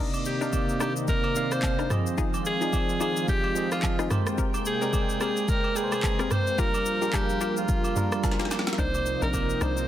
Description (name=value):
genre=amapiano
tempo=109 BPM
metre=4/4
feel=swing 58% on 16ths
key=C minor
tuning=A4 = 440 Hz
part: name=bell-like tine electric piano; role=accompaniment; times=0.0-9.9 s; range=C3 to G5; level=-31 LUFS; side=right 2 dB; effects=medium stereo tremolo
part: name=lush unison pad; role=sustained chords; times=0.0-9.9 s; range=C3 to G5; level=-34 LUFS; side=equal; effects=chorus, sidechain pumping
part: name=hollow square pluck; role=stabs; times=0.0-9.7 s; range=C4 to Bb4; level=-34 LUFS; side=left 7 dB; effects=chorus, tape echo
part: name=afro-pop drum kit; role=drums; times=0.1-9.9 s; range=handclaps, kick drum, rim click, shaker, snare drum, toms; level=-28 LUFS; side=equal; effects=none
part: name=agogo bells and woodblock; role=percussion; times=0.1-9.8 s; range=none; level=-38 LUFS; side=right 4 dB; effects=none
part: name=breathy alto saxophone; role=melody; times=0.3-9.9 s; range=F4 to C5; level=-29 LUFS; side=equal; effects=tape echo
part: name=tight log drum bass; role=bass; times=8.8-9.9 s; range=Bb1 to C2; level=-30 LUFS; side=equal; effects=none
room=light reverb, digital ambience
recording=dense, heavily limited modern master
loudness=-24 LUFS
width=side -12 dB against mid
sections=0.0-9.9 A section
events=drum fill 8.2-8.8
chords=0.0 Cm9; 1.9 Fm7; 4.1 Abmaj9; 6.6 Gm7; 8.8 Cm9